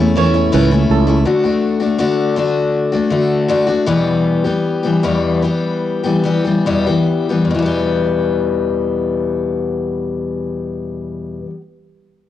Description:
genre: pop.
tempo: 70-82 BPM.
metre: 4/4.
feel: straight.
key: E minor.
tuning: A4 = 441 Hz.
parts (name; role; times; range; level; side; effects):
picked steel-string acoustic guitar; accompaniment; 0.0-11.6 s; E2 to G4; -15 LUFS; left 3 dB; cassette tape, plate reverb.
sustaining fretless electric bass; bass; 0.0-1.2 s; C#2 to E2; -14 LUFS; right 2 dB; none.
flamenco guitar; arpeggios; 0.2-1.1 s; A4 to C#5; -21 LUFS; right 9 dB; cassette tape, plate reverb.
room: wet studio reverb, RT60 0.5 s.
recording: home recording on cassette.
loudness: -14 LUFS.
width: side -12 dB against mid.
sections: 0.0-7.5 A section; 7.5-11.0 B section.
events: slowing down 1.3-7.5.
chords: 0.0 A; 1.3 D; 3.9 Em.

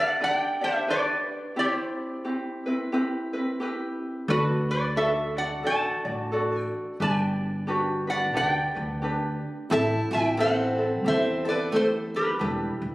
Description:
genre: Hawaiian.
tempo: 88 BPM.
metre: 4/4.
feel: swing 60% on 8ths.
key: G major.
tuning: A4 = 440 Hz.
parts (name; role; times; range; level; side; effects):
metal-body resonator slide guitar; melody; 0.0-12.9 s; F#4 to A5; -26 LUFS; equal; slapback echo.
ukulele; accompaniment; 0.0-12.9 s; C4 to D5; -28 LUFS; equal; none.
upright bass; bass; 4.3-12.9 s; E1 to E2; -30 LUFS; equal; none.
picked plugged-in acoustic archtop guitar; second line; 9.7-12.9 s; G3 to E4; -31 LUFS; right 1 dB; none.
room: moderate recital hall reverb, RT60 1.9 s.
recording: recorded on a phone in the room, club reverb.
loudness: -24 LUFS.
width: side -19 dB against mid.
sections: 0.0-9.7 A section; 9.7-12.9 B section.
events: none.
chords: 0.0 G; 1.6 Cmaj7; 4.3 D; 7.0 Gmaj7; 9.7 Am7; 12.4 Em7.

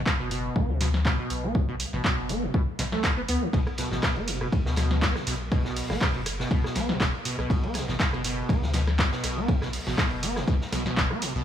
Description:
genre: acid house.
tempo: 121 BPM.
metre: 4/4.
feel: swing 54% on 16ths.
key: B minor.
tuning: A4 = 441 Hz.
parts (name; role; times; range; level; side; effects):
warm sub bass; bass; 0.0-11.4 s; F#1 to D2; -30 LUFS; left 1 dB; sidechain pumping.
electronic kick drum; drums; 0.1-11.1 s; none; -26 LUFS; equal; none.
punchy analog drum machine; drums; 0.1-11.3 s; handclaps, hi-hat, rim click, snare drum; -30 LUFS; equal; none.
liquid acid bass; riff; 0.2-11.4 s; B1 to B3; -30 LUFS; equal; ensemble chorus, tape echo.
vintage drum kit; drums; 3.5-11.3 s; hi-hat, ride cymbal, snare drum; -37 LUFS; equal; sidechain pumping on cymbals, high-pass filter on cymbals, sidechain pumping on hats, high-pass filter on hats, high-pass filter on snare, high-pass filter on room.
room: studio ambience.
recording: small room ambience.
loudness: -24 LUFS.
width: side -10 dB against mid.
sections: 0.0-11.4 A section.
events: none.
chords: 0.0 Bm.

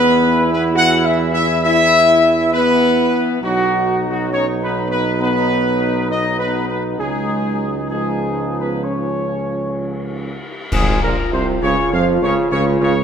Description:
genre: classical, ceremonial fanfare.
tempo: 67 BPM.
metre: 4/4.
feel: straight.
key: unclear.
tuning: A4 = 440 Hz.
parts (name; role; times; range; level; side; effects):
warm trumpet section; melody; 0.0-13.0 s; Gb4 to Gb5; -18 LUFS; equal; none.
bright trombone section; sustained chords; 0.0-12.9 s; Ab2 to E4; -23 LUFS; right 3 dB; none.
warm French horn section; sustained chords; 0.0-13.0 s; Gb3 to Gb4; -22 LUFS; left 4 dB; none.
warm tuba; bass; 0.0-13.0 s; Ab1 to F2; -21 LUFS; right 3 dB; none.
cymbal swell, clash cymbals and concert bass drum; percussion; 7.0-12.5 s; none; -25 LUFS; left 1 dB; none.
room: moderate scoring stage reverb, RT60 1.6 s.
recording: minimal, uncompressed stereo recording.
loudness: -14 LUFS.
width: side -7 dB against mid.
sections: 0.0-10.7 A section; 10.7-13.0 B section.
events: band accent 10.7-11.6.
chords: 0.0 E5; 3.4 Cb; 7.0 Dbadd9; 8.8 Db; 10.7 Db/Ab.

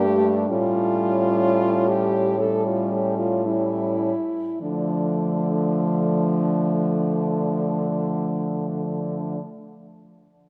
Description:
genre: classical, lyrical piece for horn quartet.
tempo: 50-68 BPM.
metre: 4/4.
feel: rubato.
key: D minor.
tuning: A4 = 439 Hz.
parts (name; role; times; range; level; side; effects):
clear French horn; melody; 0.0-9.4 s; D4 to A4; -28 LUFS; equal; none.
warm French horn; second line; 0.0-9.4 s; A3 to D4; -30 LUFS; equal; none.
warm French horn; accompaniment; 0.0-9.4 s; F3 to A3; -28 LUFS; equal; none.
warm French horn; bass; 0.0-9.4 s; G2 to D3; -29 LUFS; equal; none.
room: wet church reverb, RT60 2.6 s.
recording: none.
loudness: -23 LUFS.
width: mono.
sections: 0.0-4.6 A section; 4.6-9.2 B section.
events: slowing down 0.0-4.6.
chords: 0.5 A7; 4.6 Dm.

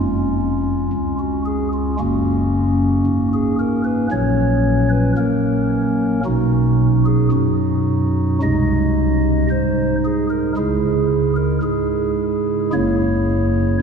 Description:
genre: classical, chorale-style piece for pipe organ.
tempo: 56 BPM.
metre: 4/4.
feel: rubato.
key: unclear.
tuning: A4 = 440 Hz.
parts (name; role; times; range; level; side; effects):
chamber organ, stopped flute; solo; 0.0-13.8 s; E#1 to D#5; -16 LUFS; equal; none.
room: wet cathedral reverb, RT60 5.2 s.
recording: heard from further back in the room.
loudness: -16 LUFS.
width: side -6 dB against mid.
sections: 0.0-13.8 A section.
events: none.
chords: 0.0 C#/E#; 2.0 F#; 4.1 F#/A#; 6.2 B; 8.4 G#/B#; 10.6 C#m; 12.7 F#7.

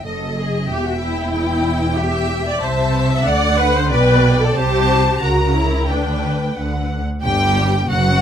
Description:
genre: quick classical-period movement for string orchestra.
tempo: 92 BPM.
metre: 2/4.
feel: straight.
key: G major.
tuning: A4 = 440 Hz.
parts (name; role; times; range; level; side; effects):
warm symphonic violin section; melody; 0.0-8.2 s; D#5 to A#5; -23 LUFS; left 1 dB; none.
rich symphonic violin section; second line; 0.0-8.2 s; F#4 to G5; -25 LUFS; left 1 dB; none.
warm symphonic viola section; accompaniment; 0.0-8.2 s; F#3 to E5; -20 LUFS; left 1 dB; none.
dark symphonic cello section; bass; 0.0-8.2 s; E2 to D3; -22 LUFS; right 1 dB; none.
warm symphonic double bass section; bass; 0.0-8.2 s; E1 to D2; -20 LUFS; right 1 dB; none.
room: little or no reverb.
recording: close, detailed microphones.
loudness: -15 LUFS.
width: side -9 dB against mid.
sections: 0.0-7.2 A section.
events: none.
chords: 0.1 D#dim/F#; 0.7 Em; 2.6 Am/C; 3.3 D; 3.9 G/B; 4.6 Am7/C; 5.2 F#7/C#; 5.9 G/D; 7.2 N.C..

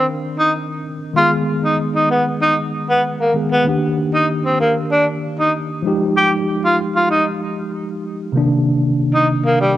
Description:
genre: afrobeats.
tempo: 96 BPM.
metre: 4/4.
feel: straight.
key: unclear.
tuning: A4 = 439 Hz.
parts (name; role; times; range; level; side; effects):
breathy tenor saxophone; melody; 0.0-9.7 s; G3 to G4; -16 LUFS; equal; cassette tape.
mellow tine electric piano; accompaniment; 0.0-9.8 s; C3 to Bb4; -19 LUFS; equal; medium stereo tremolo, cassette tape.
room: moderate spring reverb, RT60 1.7 s, small room ambience.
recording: home recording on cassette.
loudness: -15 LUFS.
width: side -14 dB against mid.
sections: 0.0-9.8 A section.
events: none.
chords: 0.0 Cm9; 1.2 Abm; 3.7 Ebmaj7; 5.8 Fm9; 8.3 Cm9.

